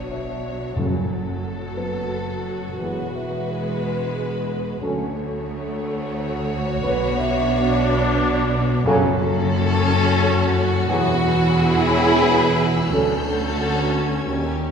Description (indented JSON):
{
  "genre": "cinematic",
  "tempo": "89 BPM",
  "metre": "3/4",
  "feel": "straight",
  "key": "unclear",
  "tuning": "A4 = 440 Hz",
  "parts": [
    { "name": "warm studio violin section", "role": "melody", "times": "0.0-14.7 s", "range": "G4 to C#5", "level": "-27 LUFS", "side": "left 2 dB", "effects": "none" },
    { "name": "warm chamber violin section", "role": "second line", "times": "0.0-14.7 s", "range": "D4 to F#4", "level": "-29 LUFS", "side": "right 1 dB", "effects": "none" },
    { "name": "rich studio viola section", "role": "accompaniment", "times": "0.0-14.7 s", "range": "F#3 to E4", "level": "-26 LUFS", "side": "equal", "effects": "none" },
    { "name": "rich chamber double bass section", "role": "bass", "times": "0.0-14.7 s", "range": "E1 to D#2", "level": "-27 LUFS", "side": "equal", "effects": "none" },
    { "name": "rich symphonic cello section", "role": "bass", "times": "0.0-14.7 s", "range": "D2 to B2", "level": "-25 LUFS", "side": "right 1 dB", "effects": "none" },
    { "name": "sub drop", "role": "sound effects", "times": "0.0-0.8 s", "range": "none", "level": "barely audible", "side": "none", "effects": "none" },
    { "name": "dark baby grand piano", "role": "texture", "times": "0.0-14.3 s", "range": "B3 to E5", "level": "-30 LUFS", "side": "left 1 dB", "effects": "none" },
    { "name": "dark trombone section", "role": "sustained chords", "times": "0.8-14.5 s", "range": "A#2 to G3", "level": "-29 LUFS", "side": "right 1 dB", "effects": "none" },
    { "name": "mellow French horn section", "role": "sustained chords", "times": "0.8-14.5 s", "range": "B3 to C#5", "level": "-26 LUFS", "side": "right 1 dB", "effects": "none" },
    { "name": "timpani", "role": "percussion", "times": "0.8-1.7, 8.8-9.8 s", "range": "F#2", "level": "-28 LUFS", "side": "equal", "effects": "none" },
    { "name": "rich chamber violin section", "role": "texture", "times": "10.9-14.6 s", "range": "E6 to G6", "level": "-33 LUFS", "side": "left 4 dB", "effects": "none" }
  ],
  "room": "wet concert hall reverb, RT60 1.9 s",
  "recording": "heard from further back in the room",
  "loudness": "-18 LUFS",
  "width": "side -6 dB against mid",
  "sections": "0.0-14.7 A section",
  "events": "impact 0.0-0.8",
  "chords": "0.0 Bmadd9; 0.8 F#m; 2.8 Eadd9; 4.8 Dmaj7; 6.8 Bmadd9; 8.9 F#m; 10.9 Eadd9; 12.9 Dmaj7"
}